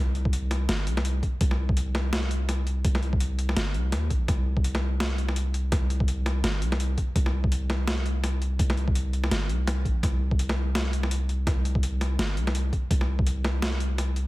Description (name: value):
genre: half-time drum and bass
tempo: 167 BPM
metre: 4/4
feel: swing 57% on 16ths, half-time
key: unclear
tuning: A4 = 438 Hz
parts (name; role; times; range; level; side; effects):
- long sustained 808-style bass; bass; 0.0-14.3 s; G1 to Eb2; -26 LUFS; equal; none
- boom bap sampler-style drum kit; drums; 0.1-14.2 s; hi-hat, snare drum; -30 LUFS; equal; overdrive
- electronic kick drum; drums; 0.3-13.2 s; none; -26 LUFS; equal; overdrive
room: little or no reverb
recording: none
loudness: -24 LUFS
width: side -19 dB against mid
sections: 0.0-14.3 A section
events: none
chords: none